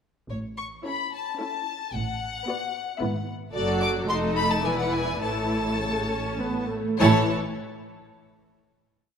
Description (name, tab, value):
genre	quick classical-period movement for string orchestra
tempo	99-114 BPM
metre	3/4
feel	rubato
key	A major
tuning	A4 = 440 Hz
part	rich chamber violin section	melody	0.3-7.3 s	C#5 to D6	-29 LUFS	left 4 dB	none
part	warm chamber cello section	bass	0.3-7.3 s	E2 to A2	-31 LUFS	right 2 dB	none
part	warm chamber double bass section	bass	0.3-7.3 s	E1 to A1	-30 LUFS	right 2 dB	none
part	rich chamber violin section	second line	0.8-7.3 s	A4 to E5	-30 LUFS	equal	none
part	warm chamber viola section	accompaniment	0.8-7.3 s	C#3 to F#4	-29 LUFS	equal	none
room	moderate scoring stage reverb, RT60 1.9 s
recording	none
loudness	-24 LUFS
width	side -7 dB against mid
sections	0.3-7.0 A section; 7.0-8.7 final chord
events	none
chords	0.3 A; 1.9 Bm7/A; 3.0 E/G#; 3.5 D/F#; 4.1 F7; 4.6 E7; 5.2 A; 7.0 A5